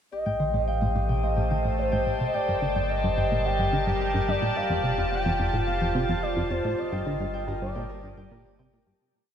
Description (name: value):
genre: ambient, sequencer-driven space music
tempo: 108 BPM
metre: 4/4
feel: straight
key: G minor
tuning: A4 = 440 Hz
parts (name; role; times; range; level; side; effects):
- expressive synth lead; melody; 0.1-8.7 s; C5 to G5; -29 LUFS; equal; chorus, shimmer reverb, tape echo
- evolving wavetable pad; sustained chords; 0.5-9.0 s; G3 to A5; -31 LUFS; equal; chorus, built-in reverb, shimmer reverb
- Celtic harp; arpeggios; 0.1-9.3 s; F4 to A5; -35 LUFS; moving between left 4 dB and right 2 dB; auto-pan, shimmer reverb, tape echo
- warm sub bass; bass; 0.1-9.0 s; F1 to A1; -31 LUFS; equal; none
- bubbling stepped-filter texture; texture; 1.4-9.0 s; G4 to G5; -44 LUFS; equal; none
- plucky analog bass; riff; 0.3-8.9 s; F2 to Eb3; -30 LUFS; equal; analog chorus, tape echo
room: wet plate reverb, RT60 3.0 s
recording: echo-heavy mix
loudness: -24 LUFS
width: side -8 dB against mid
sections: 0.1-9.0 A section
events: filter sweep on analog synth bass 0.1-9.0; fade-out 6.0-9.0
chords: 0.1 Am7b5; 2.3 Gmadd9; 4.6 F; 6.8 Gmadd9